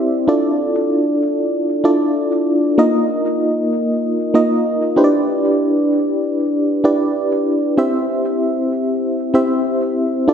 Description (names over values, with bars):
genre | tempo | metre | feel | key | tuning
pop | 96 BPM | 4/4 | straight | C major | A4 = 440 Hz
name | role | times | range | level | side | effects
FM electric piano with tremolo | solo | 0.0-10.3 s | Bb3 to E5 | -14 LUFS | equal | tape echo
room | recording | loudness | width
wet lush hall reverb, RT60 2.5 s | dark, warm production | -14 LUFS | side -8 dB against mid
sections
0.0-10.3 A section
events
none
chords
0.3 Dmadd9; 2.8 Ebsus2; 5.0 Em7; 7.8 C